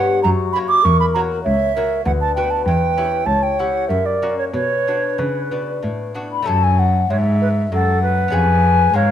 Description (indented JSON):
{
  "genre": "classical, baroque-style sonata movement with continuo",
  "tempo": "98 BPM",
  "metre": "3/4",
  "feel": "straight",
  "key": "B minor",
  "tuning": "A4 = 440 Hz",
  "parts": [
    { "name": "mellow baroque flute", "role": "melody", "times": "0.0-9.1 s", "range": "F#4 to B5", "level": "-20 LUFS", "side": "left 6 dB", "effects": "none" },
    { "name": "bright baroque flute", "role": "second line", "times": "0.0-9.1 s", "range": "A4 to D6", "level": "-20 LUFS", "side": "right 5 dB", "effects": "none" },
    { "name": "lute", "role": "accompaniment", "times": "0.0-9.1 s", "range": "D2 to C#5", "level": "-27 LUFS", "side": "left 2 dB", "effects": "none" },
    { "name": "rich cello", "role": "bass", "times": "0.0-9.1 s", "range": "C#2 to C#3", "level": "-19 LUFS", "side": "equal", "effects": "none" }
  ],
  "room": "moderate recital hall reverb, RT60 1.4 s",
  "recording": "close, detailed microphones",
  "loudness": "-15 LUFS",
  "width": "side -10 dB against mid",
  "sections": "0.0-6.5 A section; 6.5-9.1 A section",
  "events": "none",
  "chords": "0.2 F#; 0.8 F#7/E; 2.1 Bm/D; 2.7 C#dim/E; 3.9 F#; 4.5 Bm; 6.5 F#m; 8.3 C#7/E#"
}